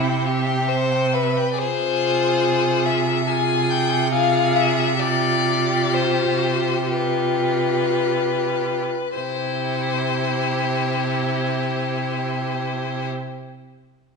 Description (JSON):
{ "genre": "classical, slow romantic movement for string quartet", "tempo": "47-72 BPM", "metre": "4/4", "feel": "rubato", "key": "C major", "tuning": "A4 = 440 Hz", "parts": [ { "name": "clear violin", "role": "melody", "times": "0.0-13.1 s", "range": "B4 to Ab5", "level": "-23 LUFS", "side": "left 8 dB", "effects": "none" }, { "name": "clear violin", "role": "second line", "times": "0.0-13.1 s", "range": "E4 to C5", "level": "-25 LUFS", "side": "left 3 dB", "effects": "none" }, { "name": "clear viola", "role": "accompaniment", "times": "0.0-13.1 s", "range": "C4 to F4", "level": "-26 LUFS", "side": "equal", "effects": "none" }, { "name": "clear cello", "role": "bass", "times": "0.0-13.1 s", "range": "C3", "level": "-25 LUFS", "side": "right 7 dB", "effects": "none" } ], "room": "moderate scoring stage reverb, RT60 1.5 s", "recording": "nothing above 10.5 kHz", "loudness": "-19 LUFS", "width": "side -4 dB against mid", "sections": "0.0-1.6 A section; 1.6-9.2 B section; 9.2-13.3 C section", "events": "slowing down 0.0-9.2", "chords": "0.0 C; 1.6 Fm/C; 9.2 C" }